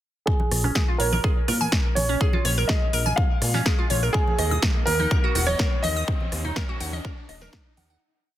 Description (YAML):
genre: progressive house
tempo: 124 BPM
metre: 4/4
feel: straight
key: unclear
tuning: A4 = 444 Hz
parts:
  - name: clear concert grand piano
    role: melody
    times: 0.3-7.5 s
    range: Ab4 to F5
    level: -28 LUFS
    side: right 1 dB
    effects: sidechain pumping, low-pass filter, dub echo
  - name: electronic kick drum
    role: drums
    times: 0.3-7.6 s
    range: none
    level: -23 LUFS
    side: equal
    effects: none
  - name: riser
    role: sound effects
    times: 1.9-8.0 s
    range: none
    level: -39 LUFS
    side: equal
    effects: none
  - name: congas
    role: percussion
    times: 0.4-7.9 s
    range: none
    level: -33 LUFS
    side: right 2 dB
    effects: sidechain pumping on perc
  - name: fat analog bass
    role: bass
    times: 0.5-8.0 s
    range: Eb1 to Bb2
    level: -25 LUFS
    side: equal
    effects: tube saturation, sidechain pumping
  - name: big-room dance drum kit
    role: drums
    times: 0.5-7.9 s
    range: hi-hat, rim click, snare drum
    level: -28 LUFS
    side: equal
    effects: none
  - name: glassy wavetable pluck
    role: arpeggios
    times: 0.6-8.0 s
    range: Db4 to Eb6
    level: -29 LUFS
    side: right 1 dB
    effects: chorus, phaser, sidechain pumping, dub echo
room: light reverb, digital ambience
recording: dense, heavily limited modern master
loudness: -20 LUFS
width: side -13 dB against mid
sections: 0.3-8.0 build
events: build-up 0.3-8.0; filter sweep on grand piano 0.3-8.0; riser 1.9-8.0; fade-out 5.4-8.0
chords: 0.3 Bbm7; 4.1 N.C.